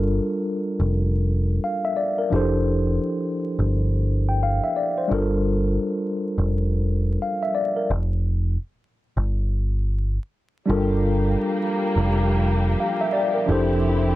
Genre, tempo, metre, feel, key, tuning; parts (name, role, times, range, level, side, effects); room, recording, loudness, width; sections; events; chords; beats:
hip hop; 86 BPM; 4/4; swing 62% on 16ths; G dorian; A4 = 440 Hz
mellow tine electric piano; accompaniment; 0.0-14.2 s; F3 to G5; -23 LUFS; left 1 dB; medium stereo tremolo, cassette tape, high-pass filter, low-pass filter
deep dub picked electric bass; bass; 0.0-14.1 s; F1 to G1; -21 LUFS; equal
dark studio string section; sustained chords; 10.7-14.2 s; F3 to G4; -27 LUFS; equal; high-pass filter, low-pass filter
little or no reverb; vinyl crackle; -20 LUFS; side -16 dB against mid
0.0-10.7 A section; 10.7-14.2 B section
break 7.9-10.7
0.0 Gm9; 2.3 Dm11/F; 7.9 Fsus2; 10.7 Gm9; 13.5 Dm11/F
0.22 0.92 1.62 | 2.32 3.01 3.71 4.41 | 5.11 5.80 6.50 7.20 | 7.90 8.60 9.29 9.99 | 10.69 11.39 12.08 12.78 | 13.48